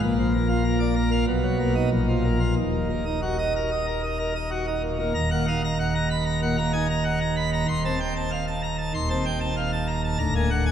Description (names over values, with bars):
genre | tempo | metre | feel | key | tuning
classical, organ toccata | 95 BPM | 4/4 | straight | Eb minor | A4 = 441 Hz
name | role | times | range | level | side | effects
pipe organ, plenum | solo | 0.0-10.7 s | D1 to C6 | -22 LUFS | equal | none
room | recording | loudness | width
wet church reverb, RT60 2.8 s | none | -22 LUFS | side -9 dB against mid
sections
0.0-5.2 A section; 5.2-10.7 B section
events
none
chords
0.0 Bb; 1.3 Bmaj7; 1.9 Bb5; 2.6 Ebm; 7.7 F7/Eb; 10.2 Bb7/D